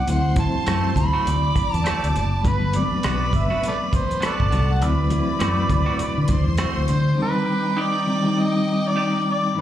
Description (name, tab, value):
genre	lush 1970s-style soul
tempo	101 BPM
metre	4/4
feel	swing 58% on 16ths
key	unclear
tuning	A4 = 441 Hz
part	overdriven harmonica	melody	0.0-9.6 s	A4 to B5	-25 LUFS	right 1 dB	slapback echo
part	clear studio string section	second line	0.0-9.6 s	Eb4 to D6	-31 LUFS	left 2 dB	slapback echo
part	reed electric piano	accompaniment	0.0-9.6 s	G2 to E4	-25 LUFS	left 2 dB	fast tremolo, slapback echo
part	fingered electric bass	bass	0.1-7.1 s	F#1 to D3	-21 LUFS	equal	none
part	warm soul drum kit	drums	0.1-7.0 s	hi-hat, kick drum, rim click	-24 LUFS	equal	none
part	congas	percussion	0.4-7.1 s	none	-33 LUFS	right 3 dB	none
part	semi-hollow electric guitar	riff	0.7-9.2 s	A3 to D5	-30 LUFS	right 6 dB	spring reverb, slapback echo
room	light reverb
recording	live gig heard through the venue's PA, club reverb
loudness	-18 LUFS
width	side -11 dB against mid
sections	0.0-7.2 A section; 7.2-9.6 B section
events	none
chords	0.1 D7; 2.4 Gmaj7; 4.8 D7; 7.2 Cmadd9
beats	| 0.07 0.67 1.26 1.85 | 2.44 3.04 3.63 4.22 | 4.81 5.41 6.00 6.59 | 7.18 7.78 8.37 8.96 | 9.55